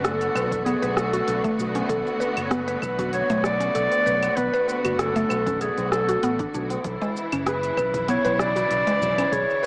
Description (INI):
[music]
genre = organic downtempo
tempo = 97 BPM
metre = 4/4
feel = swing 54% on 16ths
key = B dorian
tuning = A4 = 440 Hz
[part]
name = mellow clarinet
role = melody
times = 0.0-9.7 s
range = G#4 to D5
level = -27 LUFS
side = equal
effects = dub echo
[part]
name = clear symphonic string section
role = sustained chords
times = 0.0-9.7 s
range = C#3 to F#4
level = -32 LUFS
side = equal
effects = sidechain pumping
[part]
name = mallet-like synth pluck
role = arpeggios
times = 0.0-9.7 s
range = G#3 to B4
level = -30 LUFS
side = equal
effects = chorus, phaser, analog delay
[part]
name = mellow fretless electric bass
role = bass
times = 0.0-9.4 s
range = F#1 to B1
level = -34 LUFS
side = equal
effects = analog chorus, sidechain pumping
[part]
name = organic electronic drum kit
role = drums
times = 0.0-9.7 s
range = claves, hi-hat, rim click, shaker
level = -34 LUFS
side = equal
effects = analog delay
[part]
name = tabla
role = percussion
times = 0.4-9.7 s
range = none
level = -39 LUFS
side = equal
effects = none
[part]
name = electronic kick drum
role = drums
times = 0.5-9.5 s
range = none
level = -39 LUFS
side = equal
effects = none
[sound]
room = wet spring reverb, RT60 2.2 s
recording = echo-heavy mix, small speaker sound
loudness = -24 LUFS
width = mono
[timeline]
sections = 0.0-9.7 A section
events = none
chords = 0.0 Bm7; 6.8 C#m